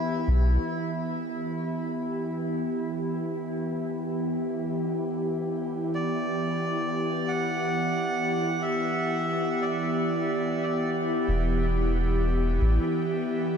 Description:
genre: ambient dub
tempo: 90 BPM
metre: 4/4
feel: swing 59% on 16ths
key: E minor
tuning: A4 = 439 Hz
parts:
  - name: airy breathy pad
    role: sustained chords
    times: 0.0-13.6 s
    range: E3 to G4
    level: -27 LUFS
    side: equal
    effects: chorus
  - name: soft dub sub bass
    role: bass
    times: 0.3-0.6, 11.3-12.8 s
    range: E1 to B1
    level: -23 LUFS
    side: equal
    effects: none
  - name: melodica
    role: melody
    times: 5.9-10.9 s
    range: D5 to F#5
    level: -32 LUFS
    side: right 1 dB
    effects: vintage 12-bit sampler grit, dub echo
room: wet huge ambient reverb, RT60 8.4 s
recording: dreamy mix soaked in reverb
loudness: -25 LUFS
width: side -7 dB against mid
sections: 0.6-11.3 A section; 11.3-13.6 B section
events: none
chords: 0.0 Em; 0.6 Em7; 11.3 Em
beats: | 0.61 1.28 1.95 2.61 | 3.28 3.94 4.61 5.28 | 5.95 6.61 7.28 7.95 | 8.61 9.28 9.95 10.61 | 11.28 11.95 12.61 13.28

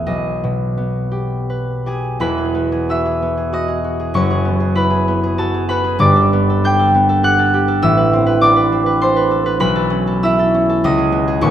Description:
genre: classical, solo harp piece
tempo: 78-103 BPM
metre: 3/4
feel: rubato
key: unclear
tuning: A4 = 442 Hz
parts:
  - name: concert harp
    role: solo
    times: 0.0-11.5 s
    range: D#1 to G6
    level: -14 LUFS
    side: equal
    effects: none
room: wet concert hall reverb, RT60 1.9 s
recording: none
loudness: -13 LUFS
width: side -10 dB against mid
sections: 0.0-2.2 A section; 2.2-11.5 B section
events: none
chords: 0.1 Baug; 2.2 Eadd9; 4.1 F#m11; 6.0 Gadd9; 7.8 Am11; 9.6 B9sus4; 10.8 C#sus2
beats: | 0.05 0.76 1.48 | 2.20 2.88 3.51 | 4.13 4.75 5.37 | 5.98 6.62 7.22 | 7.82 8.42 9.01 | 9.61 10.23 10.83 | 11.42

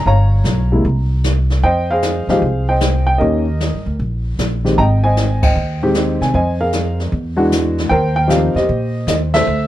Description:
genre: jazz piano trio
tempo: 153 BPM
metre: 4/4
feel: swing 66% on 8ths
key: unclear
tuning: A4 = 437 Hz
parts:
  - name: warm baby grand piano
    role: melody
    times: 0.0-9.7 s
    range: C3 to Bb5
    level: -16 LUFS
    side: equal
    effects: none
  - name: upright bass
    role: bass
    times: 0.0-9.7 s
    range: G1 to C3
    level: -17 LUFS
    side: equal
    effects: none
  - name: jazz brush drum kit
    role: drums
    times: 0.1-9.7 s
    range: brushed snare drum, crash cymbal, hi-hat, kick drum, ride cymbal, snare drum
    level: -22 LUFS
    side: left 1 dB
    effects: none
room: small room reverb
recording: none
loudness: -13 LUFS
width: side -14 dB against mid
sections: 0.0-9.7 A section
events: band accent 5.4, 9.3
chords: 0.1 Gm7b5; 0.8 Bbsus2/C; 1.6 Fm9; 3.2 Eb; 4.8 Abmaj7; 6.3 Fm7; 7.1 E9; 7.9 Eb69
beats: | 0.06 0.46 0.85 1.24 | 1.63 2.03 2.42 2.81 | 3.20 3.60 3.99 4.38 | 4.77 5.16 5.56 5.95 | 6.34 6.73 7.12 7.51 | 7.91 8.30 8.69 9.08 | 9.47

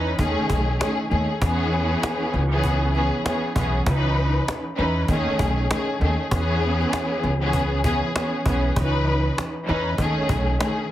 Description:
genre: hip hop, boom-bap hip-hop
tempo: 98 BPM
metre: 4/4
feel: swing 57% on 16ths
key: unclear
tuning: A4 = 440 Hz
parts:
  - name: warm studio string section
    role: accompaniment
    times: 0.0-10.9 s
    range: D#3 to B4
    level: -23 LUFS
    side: equal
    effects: cassette tape, high-pass filter, low-pass filter, plate reverb
  - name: upright bass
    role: bass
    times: 0.0-10.5 s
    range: B1 to E2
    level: -24 LUFS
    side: equal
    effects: none
  - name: cajon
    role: drums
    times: 0.2-10.8 s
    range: none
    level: -27 LUFS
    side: equal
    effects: none
room: light reverb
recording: heavily compressed radio sound, multiband compression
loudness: -20 LUFS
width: side -13 dB against mid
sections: 0.0-10.9 A section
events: none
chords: 0.2 B13; 1.4 E6; 3.9 C#m9; 5.1 B13; 6.3 E6; 8.8 C#m9; 10.0 B13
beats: 0.19 0.81 | 1.42 2.03 2.64 3.25 | 3.87 4.48 5.09 5.70 | 6.32 6.93 7.54 8.15 | 8.77 9.38 9.99 10.60

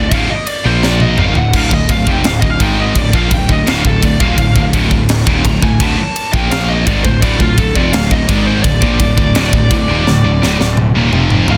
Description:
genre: heavy metal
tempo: 84 BPM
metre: 4/4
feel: straight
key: D phrygian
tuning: A4 = 440 Hz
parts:
  - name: high-gain lead guitar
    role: melody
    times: 0.0-11.6 s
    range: F4 to Bb5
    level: -22 LUFS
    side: equal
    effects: distortion, delay
  - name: heavy high-gain guitar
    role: riff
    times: 0.0-11.6 s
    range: D2 to Bb3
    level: -22 LUFS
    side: equal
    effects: distortion
  - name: scooped high-gain guitar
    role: riff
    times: 0.0-11.6 s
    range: D2 to Bb3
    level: -21 LUFS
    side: equal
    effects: distortion
  - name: thick fuzz guitar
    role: riff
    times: 0.0-11.6 s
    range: D2 to Bb3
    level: -23 LUFS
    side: equal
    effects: none
  - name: fuzz picked electric bass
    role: bass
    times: 0.0-11.6 s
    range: D1 to Bb1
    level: -19 LUFS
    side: equal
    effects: overdrive
  - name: tight metal drum kit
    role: drums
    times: 0.1-11.6 s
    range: crash cymbal, kick drum, ride cymbal, snare drum, toms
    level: -18 LUFS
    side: equal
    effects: none
room: studio ambience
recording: dense, heavily limited modern master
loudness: -13 LUFS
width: mono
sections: 0.0-11.6 A section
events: lead electric guitar solo 0.0-11.6; drum fill 0.8-1.5, 10.1-11.6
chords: 0.0 Dm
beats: 0.12 0.83 | 1.54 2.25 2.96 3.67 | 4.38 5.09 5.80 6.51 | 7.22 7.93 8.64 9.36 | 10.07 10.78 11.49

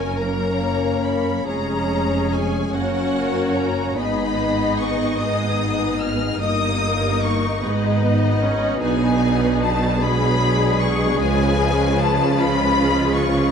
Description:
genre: classical, slow romantic movement for symphony orchestra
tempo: 50 BPM (dotted quarters)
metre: 6/8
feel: rubato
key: unclear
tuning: A4 = 439 Hz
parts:
  - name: rich studio violin section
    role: melody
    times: 0.0-13.5 s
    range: F#5 to E#6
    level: -25 LUFS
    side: left 4 dB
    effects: none
  - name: rich symphonic violin section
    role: second line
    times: 0.0-13.5 s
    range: E#4 to D#5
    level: -27 LUFS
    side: left 3 dB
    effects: none
  - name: rich symphonic viola section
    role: accompaniment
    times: 0.0-13.5 s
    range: G#3 to A#4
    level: -24 LUFS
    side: right 1 dB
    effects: none
  - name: warm French horn section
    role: sustained chords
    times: 0.0-13.5 s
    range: E#3 to D#4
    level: -25 LUFS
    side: left 4 dB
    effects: none
  - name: rich studio cello section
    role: bass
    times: 0.0-13.5 s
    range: E#2 to C#3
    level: -25 LUFS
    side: right 3 dB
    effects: none
  - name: rich studio double bass section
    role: bass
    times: 0.0-13.5 s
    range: E#1 to C#2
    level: -24 LUFS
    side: right 3 dB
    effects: none
room: moderate recital hall reverb, RT60 1.3 s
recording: nothing above 10.7 kHz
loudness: -17 LUFS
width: side -7 dB against mid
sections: 0.0-13.5 A section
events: none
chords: 0.0 F#; 1.5 C#/E#; 2.7 F#; 4.0 G#m; 6.4 D#/G; 7.6 G#m; 8.8 G#m7b5/B; 11.2 C#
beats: 0.21 | 1.47 2.74 | 3.98 5.19 | 6.40 7.62 | 8.81 10.01 | 11.20 12.38

